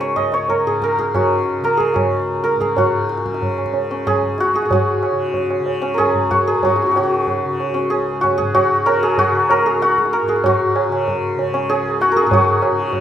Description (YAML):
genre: indian classical, Hindustani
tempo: 188 BPM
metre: 3/4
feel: straight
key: Db raga durga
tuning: A4 = 439 Hz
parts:
  - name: santur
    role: melody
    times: 0.0-13.0 s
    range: Db4 to Eb5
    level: -16 LUFS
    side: left 1 dB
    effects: none
  - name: tanpura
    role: drone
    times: 0.0-13.0 s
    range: Db2 to Db3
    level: -27 LUFS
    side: left 2 dB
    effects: none
  - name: tabla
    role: percussion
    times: 0.0-13.0 s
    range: none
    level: -21 LUFS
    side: right 3 dB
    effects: none
room: light reverb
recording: minimal, uncompressed stereo recording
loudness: -15 LUFS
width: side -10 dB against mid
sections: 0.0-2.8 A section; 2.8-10.4 B section; 10.4-13.0 C section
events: speeding up 0.0-13.0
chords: none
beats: 0.16 0.49 | 0.82 1.14 1.47 | 1.79 2.12 2.44 | 2.77 3.09 3.42 | 3.74 4.06 4.38 | 4.71 5.03 5.35 | 5.67 5.99 6.31 | 6.63 6.95 7.27 | 7.58 7.90 8.22 | 8.54 8.85 9.17 | 9.48 9.80 10.12 | 10.43 10.74 11.06 | 11.37 11.69 12.00 | 12.31 12.62 12.93